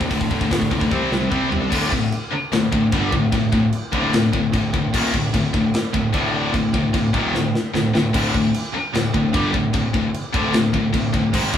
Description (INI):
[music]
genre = heavy metal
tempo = 150 BPM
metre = 4/4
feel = straight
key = unclear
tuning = A4 = 440 Hz
[part]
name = distorted electric guitar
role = riff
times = 0.0-11.6 s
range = D2 to C4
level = -26 LUFS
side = equal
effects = overdrive
[part]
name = heavy high-gain guitar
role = riff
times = 0.0-11.6 s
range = D2 to C4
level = -22 LUFS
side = left 5 dB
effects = distortion
[part]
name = heavy high-gain guitar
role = riff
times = 0.0-11.6 s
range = D2 to C4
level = -24 LUFS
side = right 4 dB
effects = distortion
[part]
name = fuzz picked electric bass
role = bass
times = 0.0-11.6 s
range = D1 to C2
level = -27 LUFS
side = left 1 dB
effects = overdrive
[part]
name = tight metal drum kit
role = drums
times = 0.0-11.6 s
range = china cymbal, crash cymbal, hi-hat, kick drum, snare drum, toms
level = -23 LUFS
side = equal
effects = none
[sound]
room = wet studio ambience, RT60 0.5 s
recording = band playing live in one room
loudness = -17 LUFS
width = side -9 dB against mid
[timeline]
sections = 0.0-1.7 A section; 1.7-11.6 B section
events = drum fill 0.9-1.7, 7.3-8.1; half time 1.7-11.6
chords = 0.0 D5; 0.9 C5; 1.7 D5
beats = | 0.11 0.51 0.91 1.31 | 1.72 2.12 2.52 2.92 | 3.32 3.73 4.13 4.53 | 4.93 5.33 5.73 6.13 | 6.53 6.93 7.33 7.74 | 8.14 8.54 8.94 9.34 | 9.74 10.14 10.54 10.94 | 11.34